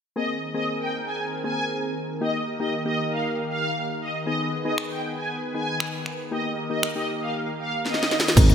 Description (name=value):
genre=dance-pop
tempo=117 BPM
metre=4/4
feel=straight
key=Eb major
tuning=A4 = 441 Hz
part: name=filtered supersaw swell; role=melody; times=0.2-8.2 s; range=Eb5 to Ab5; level=-28 LUFS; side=right 1 dB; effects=ensemble chorus, sidechain pumping
part: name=soft electric-piano-like synth keys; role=accompaniment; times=0.2-8.5 s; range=Bb3 to Bb4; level=-30 LUFS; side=left 2 dB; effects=chorus
part: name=warm analog pad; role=sustained chords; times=0.2-8.5 s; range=C3 to Cb5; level=-31 LUFS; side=equal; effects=chorus, tremolo, sidechain pumping
part: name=house drum kit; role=drums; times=4.8-8.5 s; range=crash cymbal, finger snaps, hi-hat, kick drum, shaker, snare drum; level=-21 LUFS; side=equal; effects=gated reverb
part: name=mallet-like synth pluck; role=arpeggios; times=8.4-8.5 s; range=Eb3 to Bb3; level=-28 LUFS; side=left 7 dB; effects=chorus, sidechain pumping
part: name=twelve-string electric guitar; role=riff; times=8.4-8.5 s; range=Ab3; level=-26 LUFS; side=right 8 dB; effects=analog chorus
part: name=fingered electric bass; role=bass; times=8.4-8.5 s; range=Ab1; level=-17 LUFS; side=equal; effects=sidechain pumping
part: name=tambourine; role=percussion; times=8.4-8.5 s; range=none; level=-36 LUFS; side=right 11 dB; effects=none
part: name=impact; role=sound effects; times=8.5 s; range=none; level=-24 LUFS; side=right 1 dB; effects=none
room=moderate lush hall reverb, RT60 1.8 s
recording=bright 1980s-style digital production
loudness=-24 LUFS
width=side -8 dB against mid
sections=0.2-8.4 A section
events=drum fill 7.9-8.4; impact 8.4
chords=0.2 Abadd9; 2.2 Eb; 4.3 Abm; 6.3 Eb